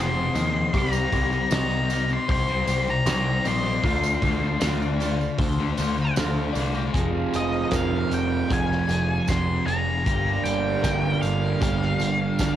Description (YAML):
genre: rock, shoegaze and dream pop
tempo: 77 BPM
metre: 4/4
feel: straight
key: unclear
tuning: A4 = 440 Hz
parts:
  - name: octave-fuzz lead guitar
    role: melody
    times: 0.0-12.6 s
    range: Eb5 to C6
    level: -27 LUFS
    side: left 1 dB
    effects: distortion, cassette tape, tape echo
  - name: twelve-string electric guitar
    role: arpeggios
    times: 0.0-12.6 s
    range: F4 to Eb5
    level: -34 LUFS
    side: left 7 dB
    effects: wide subtle chorus, cassette tape, tape echo
  - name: overdriven semi-hollow guitar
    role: riff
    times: 0.0-12.6 s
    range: F2 to Ab4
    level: -28 LUFS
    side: right 7 dB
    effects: reverse reverb, cassette tape
  - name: thick fuzz guitar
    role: riff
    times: 0.0-12.6 s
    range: F2 to D4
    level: -28 LUFS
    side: left 7 dB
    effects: distortion, lush chorus, cassette tape
  - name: growling picked electric bass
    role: bass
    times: 0.0-12.6 s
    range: F1 to Eb2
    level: -28 LUFS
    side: equal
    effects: overdrive
  - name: loose indie drum kit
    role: drums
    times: 0.4-12.6 s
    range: hi-hat, kick drum, snare drum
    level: -29 LUFS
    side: equal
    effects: cassette tape
  - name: tambourine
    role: percussion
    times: 0.4-12.6 s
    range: none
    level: -41 LUFS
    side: right 9 dB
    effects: none
room: light reverb, small room ambience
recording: home recording on cassette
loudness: -21 LUFS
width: side -11 dB against mid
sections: 0.0-6.9 A section; 6.9-12.6 B section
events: none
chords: 0.0 Fm7; 0.7 Cm7; 3.8 Dm7; 6.9 Fm; 10.1 Gm7